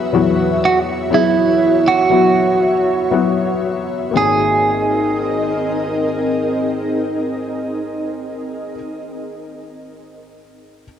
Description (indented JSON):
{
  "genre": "pop",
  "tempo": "58-62 BPM",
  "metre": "4/4",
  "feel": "straight",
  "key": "Ab major",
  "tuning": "A4 = 440 Hz",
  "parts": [
    { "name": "felt-muted upright piano", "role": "accompaniment", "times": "0.0-10.9 s", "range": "Ab1 to Ab4", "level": "-19 LUFS", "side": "left 7 dB", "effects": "cassette tape" },
    { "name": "ethereal airy pad", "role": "sustained chords", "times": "0.0-8.8 s", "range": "C4 to E5", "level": "-21 LUFS", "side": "left 1 dB", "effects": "ensemble chorus, built-in reverb, cassette tape" },
    { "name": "clean electric guitar", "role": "melody", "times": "0.7-8.8 s", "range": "E4 to Ab4", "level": "-16 LUFS", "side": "right 4 dB", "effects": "spring reverb, cassette tape, plate reverb, analog delay" }
  ],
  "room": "wet booth ambience, RT60 0.2 s",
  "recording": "home recording on cassette",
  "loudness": "-14 LUFS",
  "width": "side -9 dB against mid",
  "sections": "0.0-4.2 A section; 4.2-8.3 B section",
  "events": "slowing down 0.0-4.2",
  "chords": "0.0 Esus2; 4.2 Abadd9"
}